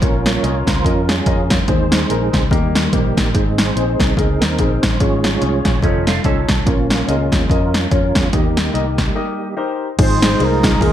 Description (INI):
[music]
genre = uptempo gospel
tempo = 144 BPM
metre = 4/4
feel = swing 57% on 8ths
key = Ab major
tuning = A4 = 440 Hz
[part]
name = warm grand piano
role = accompaniment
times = 0.0-10.9 s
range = Ab2 to Eb5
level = -22 LUFS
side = left 4 dB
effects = lush chorus
[part]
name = tonewheel organ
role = sustained chords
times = 0.0-10.9 s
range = Eb3 to Db5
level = -22 LUFS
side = right 4 dB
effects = slow rotary speaker, chorus vibrato
[part]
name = fingered electric bass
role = bass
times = 0.0-10.9 s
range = F1 to F2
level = -20 LUFS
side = equal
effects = none
[part]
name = punchy analog drum machine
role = drums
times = 0.0-10.9 s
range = crash cymbal, hi-hat, kick drum, ride cymbal, snare drum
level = -17 LUFS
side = equal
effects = gated reverb
[part]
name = clean electric guitar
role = second line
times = 5.8-6.6 s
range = F3 to A4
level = -24 LUFS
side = right 8 dB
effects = ensemble chorus
[part]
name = mellow horn section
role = melody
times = 10.0-10.9 s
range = Ab3 to C5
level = -19 LUFS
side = right 2 dB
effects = none
[sound]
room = light reverb, digital ambience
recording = bright 1980s-style digital production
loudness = -14 LUFS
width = side -11 dB against mid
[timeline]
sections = 0.0-10.0 A section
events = tonewheel organ solo 0.0-10.0; break 9.2-10.0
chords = 0.0 Bbm; 1.7 Ab/Eb; 2.5 Eb; 3.3 Ab; 5.0 Db/Ab; 5.8 F7b13; 6.7 Bbm; 8.3 Eb; 10.0 Ab6